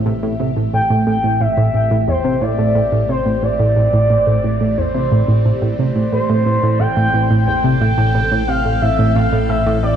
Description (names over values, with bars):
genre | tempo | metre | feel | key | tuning
ambient, sequencer-driven space music | 89 BPM | 4/4 | straight | A minor | A4 = 440 Hz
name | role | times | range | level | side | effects
evolving wavetable pad | sustained chords | 0.0-10.0 s | E3 to A4 | -26 LUFS | right 1 dB | chorus, built-in reverb, phaser
tight sequenced synth | riff | 0.0-10.0 s | E2 to C3 | -16 LUFS | right 1 dB | chorus, tape echo
analog drone | bass | 0.0-10.0 s | A1 | -26 LUFS | equal | chorus
expressive portamento lead | melody | 0.7-10.0 s | C5 to G5 | -18 LUFS | equal | lush chorus, tape echo
room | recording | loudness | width
wet echo chamber reverb, RT60 2.1 s | echo-heavy mix | -13 LUFS | side -9 dB against mid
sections
0.0-10.0 A section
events
fade-in on ambient pad 0.0-10.0; fade-in on synth drone 0.0-10.0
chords
0.0 Am7